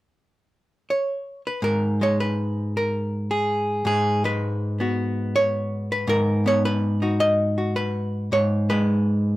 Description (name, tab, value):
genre	solo jazz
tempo	108 BPM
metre	4/4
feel	swing 69% on 8ths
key	G# minor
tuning	A4 = 440 Hz
part	archtop guitar, miked and amplified	solo	0.9-9.4 s	G#2 to D#5	-20 LUFS	equal	none
room	light reverb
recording	close, detailed microphones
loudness	-21 LUFS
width	side -17 dB against mid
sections	0.0-1.6 A section; 1.6-9.4 B section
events	none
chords	0.0 N.C.; 1.6 G#m9